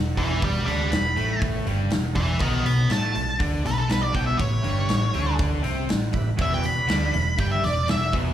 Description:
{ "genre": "blues rock power trio and southern rock", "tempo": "121 BPM", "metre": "4/4", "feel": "straight", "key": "unclear", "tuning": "A4 = 440 Hz", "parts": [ { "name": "crunchy overdriven guitar", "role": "riff", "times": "0.0-8.3 s", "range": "E2 to A4", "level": "-28 LUFS", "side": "equal", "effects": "slapback echo" }, { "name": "vintage muted picked electric bass", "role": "bass", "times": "0.0-8.3 s", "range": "E1 to A2", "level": "-26 LUFS", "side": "equal", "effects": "none" }, { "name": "overdriven tonewheel organ", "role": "sustained chords", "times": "0.1-8.3 s", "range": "D4 to E5", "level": "-39 LUFS", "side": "right 4 dB", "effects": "lush chorus, plate reverb" }, { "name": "octave-fuzz lead guitar", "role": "melody", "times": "0.2-8.1 s", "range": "A4 to B5", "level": "-26 LUFS", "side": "equal", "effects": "distortion, plate reverb, slapback echo" }, { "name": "big rock drum kit", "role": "drums", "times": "0.2-8.2 s", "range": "hi-hat, kick drum, snare drum", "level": "-27 LUFS", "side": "equal", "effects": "none" } ], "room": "light reverb", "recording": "live gig heard through the venue's PA, club reverb", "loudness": "-21 LUFS", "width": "side -11 dB against mid", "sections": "0.0-8.3 A section", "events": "lead electric guitar solo 0.0-8.3", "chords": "0.0 E7; 2.4 B7; 4.4 A7; 6.4 E7" }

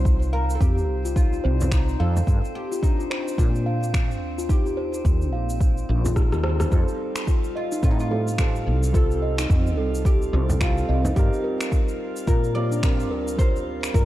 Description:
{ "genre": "organic downtempo", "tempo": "108 BPM", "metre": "4/4", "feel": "swing 59% on 16ths", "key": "F mixolydian", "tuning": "A4 = 439 Hz", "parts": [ { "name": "oud", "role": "melody", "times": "0.0-14.1 s", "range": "D4 to D5", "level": "-32 LUFS", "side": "equal", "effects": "digital delay" }, { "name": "woody fretless electric bass", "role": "bass", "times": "0.0-14.1 s", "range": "Bb1 to Bb2", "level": "-24 LUFS", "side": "equal", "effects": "ensemble chorus" }, { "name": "drifting glass-harmonics texture", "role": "texture", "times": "0.0-14.1 s", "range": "C4 to F5", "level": "-38 LUFS", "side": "equal", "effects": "chorus, built-in reverb" }, { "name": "electronic kick drum", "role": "drums", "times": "0.1-14.1 s", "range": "none", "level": "-20 LUFS", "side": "equal", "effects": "overdrive" }, { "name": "electronic shaker, finger snaps and rim click", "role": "drums", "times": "0.1-14.1 s", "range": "none", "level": "-33 LUFS", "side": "left 1 dB", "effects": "overdrive" }, { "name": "steel tongue drum", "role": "arpeggios", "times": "0.3-14.1 s", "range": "C4 to F5", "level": "-30 LUFS", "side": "left 1 dB", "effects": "digital delay" }, { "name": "frame drum", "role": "percussion", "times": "1.6-2.3, 6.1-6.7, 10.5-11.1 s", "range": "none", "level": "-29 LUFS", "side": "right 1 dB", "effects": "none" }, { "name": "felt-muted upright piano", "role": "accompaniment", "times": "6.7-14.1 s", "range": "G3 to Bb4", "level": "-31 LUFS", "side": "right 2 dB", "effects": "sidechain pumping, digital delay" } ], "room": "light reverb, studio reverb", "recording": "dark, warm production", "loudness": "-20 LUFS", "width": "side -15 dB against mid", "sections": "0.0-6.7 A section; 6.7-14.1 B section", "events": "drum fill 6.2-6.7", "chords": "0.0 F5; 2.3 Gm7 (rootless); 4.5 Eb6; 6.7 F7; 11.2 Gm7" }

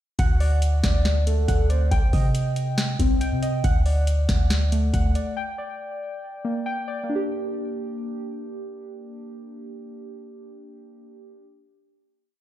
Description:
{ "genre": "hip hop, trap", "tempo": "139 BPM", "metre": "4/4", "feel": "half-time", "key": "G harmonic minor", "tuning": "A4 = 440 Hz", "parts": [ { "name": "soft octave-layered synth lead", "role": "second line", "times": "0.2-1.9 s", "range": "A4 to F#5", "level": "-32 LUFS", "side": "right 1 dB", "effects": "chorus, phaser, ping-pong delay" }, { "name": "muted felt-like synth keys", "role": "arpeggios", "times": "0.2-11.5 s", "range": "A3 to G5", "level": "-30 LUFS", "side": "left 1 dB", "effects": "chorus, low-pass filter, ping-pong delay" }, { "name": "warm 808-style bass", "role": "bass", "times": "0.2-5.1 s", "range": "C2 to C3", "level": "-21 LUFS", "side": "equal", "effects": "none" }, { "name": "booming analog drum machine", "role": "drums", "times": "0.2-5.3 s", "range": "hi-hat, kick drum, snare drum", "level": "-23 LUFS", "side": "equal", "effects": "none" } ], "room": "digital ambience", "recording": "played on a big sound system in a bare room, stone room reverb", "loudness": "-21 LUFS", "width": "side -13 dB against mid", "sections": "0.2-7.1 hook; 7.1-10.5 final chord", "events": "none", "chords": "0.2 D; 1.9 Cm; 3.6 D; 5.4 Gm" }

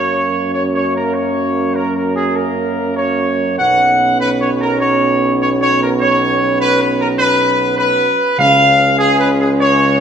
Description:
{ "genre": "classical", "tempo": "100 BPM", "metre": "4/4", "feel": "straight", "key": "F# major", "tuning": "A4 = 440 Hz", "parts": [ { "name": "mellow trumpet section", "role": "melody", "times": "0.0-10.0 s", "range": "G#4 to F#5", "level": "-14 LUFS", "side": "equal", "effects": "none" }, { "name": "dark French horn section", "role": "sustained chords", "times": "0.0-10.0 s", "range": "C#4", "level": "-20 LUFS", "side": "left 3 dB", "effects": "none" }, { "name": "warm trombone section", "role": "sustained chords", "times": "0.0-10.0 s", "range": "C#3 to B3", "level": "-22 LUFS", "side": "right 5 dB", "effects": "none" }, { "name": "warm tuba", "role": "bass", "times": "0.0-10.0 s", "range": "B1 to F#2", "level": "-20 LUFS", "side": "right 4 dB", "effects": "none" }, { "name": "timpani", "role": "percussion", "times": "8.4-9.3 s", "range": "C#3", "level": "-28 LUFS", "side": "equal", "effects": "none" } ], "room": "wet scoring stage reverb, RT60 2.0 s", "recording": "none", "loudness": "-12 LUFS", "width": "side -8 dB against mid", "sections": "0.0-10.0 A section", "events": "none", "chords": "0.0 F#; 3.6 Bsus2; 8.4 C#" }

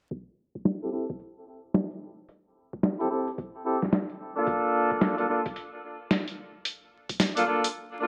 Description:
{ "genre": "glitch hop", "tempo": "110 BPM", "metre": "4/4", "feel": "swing 62% on 16ths", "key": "A phrygian", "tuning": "A4 = 440 Hz", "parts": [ { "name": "boom bap sampler-style drum kit", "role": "drums", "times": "0.1-7.7 s", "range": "hi-hat, snare drum", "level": "-29 LUFS", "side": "equal", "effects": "studio reverb" }, { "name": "electronic kick drum", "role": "drums", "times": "0.1-7.2 s", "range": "none", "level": "-39 LUFS", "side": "equal", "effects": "high-pass filter on kick, studio reverb" }, { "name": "dark horn section", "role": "stabs", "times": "0.8-8.1 s", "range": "Bb3 to A4", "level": "-30 LUFS", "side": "equal", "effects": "sidechain pumping, low-pass filter, digital delay" } ], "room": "moderate digital room reverb, RT60 1.0 s", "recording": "vinyl crackle, low-pass filter", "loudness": "-28 LUFS", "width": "mono", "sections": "0.1-8.1 A section", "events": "filter sweep on horn section 0.1-8.1; filter sweep 0.1-8.1; break 7.7-8.1", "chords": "0.1 Am7; 4.5 Bbmaj7" }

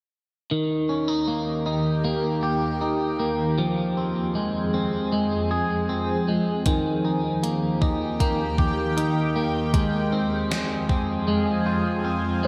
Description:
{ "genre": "dream pop", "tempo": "78 BPM", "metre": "4/4", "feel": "straight", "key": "unclear", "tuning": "A4 = 440 Hz", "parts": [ { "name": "shimmering ambient pad", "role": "sustained chords", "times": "1.2-12.5 s", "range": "Eb2 to Ab4", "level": "-28 LUFS", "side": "equal", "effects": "chorus, built-in reverb, phaser" }, { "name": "electric guitar at the edge of break-up", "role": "arpeggios", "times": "0.5-12.5 s", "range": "Eb3 to Ab4", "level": "-27 LUFS", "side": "equal", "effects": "subtle chorus, digital delay" }, { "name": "gated 80s digital drum machine", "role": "drums", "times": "6.7-11.1 s", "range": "hi-hat, kick drum, snare drum", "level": "-26 LUFS", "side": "equal", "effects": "gated reverb, gated reverb snare" } ], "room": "wet lush hall reverb, RT60 2.5 s", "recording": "bright 1980s-style digital production", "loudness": "-24 LUFS", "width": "mono", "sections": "0.5-12.5 A section", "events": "none", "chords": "0.5 Eb; 3.6 Fm; 6.7 Eb; 9.7 Fm" }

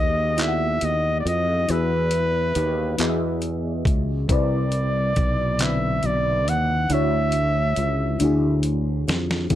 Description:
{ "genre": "slow six-eight R&B", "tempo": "46 BPM (dotted quarters)", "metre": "6/8", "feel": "straight", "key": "unclear", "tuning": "A4 = 440 Hz", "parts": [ { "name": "warm flugelhorn", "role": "melody", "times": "0.0-8.7 s", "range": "B4 to F#5", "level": "-24 LUFS", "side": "equal", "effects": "slapback echo" }, { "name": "mellow FM electric piano", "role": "accompaniment", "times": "0.0-9.6 s", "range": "C3 to F#5", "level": "-26 LUFS", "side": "left 2 dB", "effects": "chorus, phaser" }, { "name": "sustaining fretless electric bass", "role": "bass", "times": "0.0-9.6 s", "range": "B1 to F2", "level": "-24 LUFS", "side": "equal", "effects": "analog chorus" }, { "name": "dusty soul sampler-style drum kit", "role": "drums", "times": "0.4-9.6 s", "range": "handclaps, hi-hat, kick drum, snare drum", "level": "-24 LUFS", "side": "equal", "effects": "none" } ], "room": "light reverb", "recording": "dark, warm production", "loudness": "-20 LUFS", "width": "side -12 dB against mid", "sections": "0.0-9.5 A section", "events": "drum fill 6.9-9.5", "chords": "0.0 Emaj9; 4.3 Cmaj9; 6.9 Dmaj9" }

